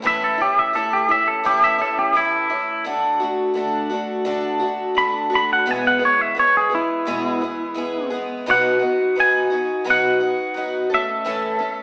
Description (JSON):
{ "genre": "rock", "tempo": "86 BPM", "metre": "4/4", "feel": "straight", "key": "E major", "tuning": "A4 = 442 Hz", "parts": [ { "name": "picked twelve-string acoustic guitar", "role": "accompaniment", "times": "0.0-11.8 s", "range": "E2 to A4", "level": "-21 LUFS", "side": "equal", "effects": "none" }, { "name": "twangy electric guitar", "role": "melody", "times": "0.1-11.8 s", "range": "E4 to B5", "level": "-18 LUFS", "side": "equal", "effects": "spring reverb" } ], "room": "wet large studio reverb, RT60 1.1 s", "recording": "band playing live in one room, small speaker sound", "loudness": "-17 LUFS", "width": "side -30 dB against mid", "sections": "0.0-11.8 A section", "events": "clean electric guitar solo 0.0-11.8", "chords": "0.0 A; 2.9 D; 5.7 E; 8.5 B; 10.9 A" }